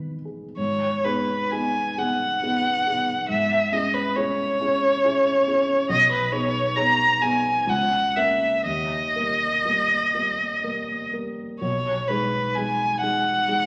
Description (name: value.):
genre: classical, romantic duo for violin and grand piano.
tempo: 59-72 BPM.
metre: 3/4.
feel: rubato.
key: G# minor.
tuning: A4 = 441 Hz.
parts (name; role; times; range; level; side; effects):
dark baby grand piano; accompaniment; 0.0-13.7 s; B1 to A#4; -30 LUFS; equal; none.
rich violin; melody; 0.6-13.7 s; B4 to A#5; -23 LUFS; equal; none.
room: wet recital hall reverb, RT60 1.6 s.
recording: none.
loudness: -23 LUFS.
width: mono.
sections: 0.6-13.7 A section.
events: none.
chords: 0.0 G#m; 3.3 C#m/G#; 5.9 G#m/B; 7.7 A#dim/C#; 8.7 D#; 11.6 G#m/B.